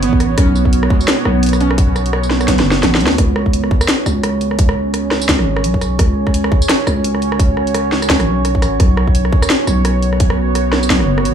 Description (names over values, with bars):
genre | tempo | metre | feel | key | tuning
half-time drum and bass | 171 BPM | 4/4 | swing 58% on 16ths, half-time | unclear | A4 = 440 Hz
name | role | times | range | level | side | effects
deep dark ambient pad | sustained chords | 0.0-11.3 s | B3 to C#5 | -19 LUFS | right 2 dB | chorus, built-in reverb, vintage 12-bit sampler grit, sidechain pumping
warbly dusty pluck | arpeggios | 0.0-3.0 s | C#3 to C#5 | -21 LUFS | right 1 dB | phaser, wide subtle chorus, cassette tape, tape echo
growling 808-style bass | bass | 0.0-11.3 s | F#1 to D2 | -16 LUFS | equal | tube saturation
drum and bass drum kit | drums | 0.0-11.3 s | hi-hat, rim click, snare drum, tambourine | -18 LUFS | equal | none
electronic kick drum | drums | 0.1-10.3 s | none | -13 LUFS | equal | none
room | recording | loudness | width
light reverb, digital ambience | small room ambience | -12 LUFS | side -8 dB against mid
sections
0.0-3.2 A section; 3.2-11.3 A section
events
drop 0.0-3.2, 3.2-11.3; kick drops out 2.5-3.2; drum fill 2.5-3.2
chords
0.0 B5; 3.2 C#5; 8.8 B5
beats
0.03 | 0.38 0.73 1.08 1.43 | 1.78 2.13 2.48 2.83 | 3.18 3.54 3.89 4.24 | 4.59 4.94 5.29 5.64 | 5.99 6.34 6.69 7.04 | 7.39 7.75 8.10 8.45 | 8.80 9.15 9.50 9.85 | 10.20 10.55 10.90 11.25